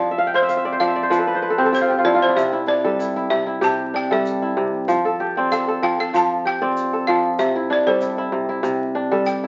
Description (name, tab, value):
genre	west african traditional, West African string and xylophone music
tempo	96 BPM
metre	4/4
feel	swing 53% on 16ths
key	C major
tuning	A4 = 441 Hz
part	balafon	melody	0.0-9.5 s	C5 to A5	-24 LUFS	equal	none
part	kora	arpeggios	0.0-9.5 s	C3 to G5	-21 LUFS	equal	none
part	egg shaker	percussion	0.5-9.4 s	none	-51 LUFS	equal	none
room	wet studio reverb, RT60 0.8 s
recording	very old 78 rpm record, vinyl crackle, nothing above 7.7 kHz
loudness	-20 LUFS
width	mono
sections	0.0-9.5 A section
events	balafon solo 0.0-9.5; kora fill 0.1-2.4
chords	0.0 F5; 2.4 C; 4.9 F; 7.4 C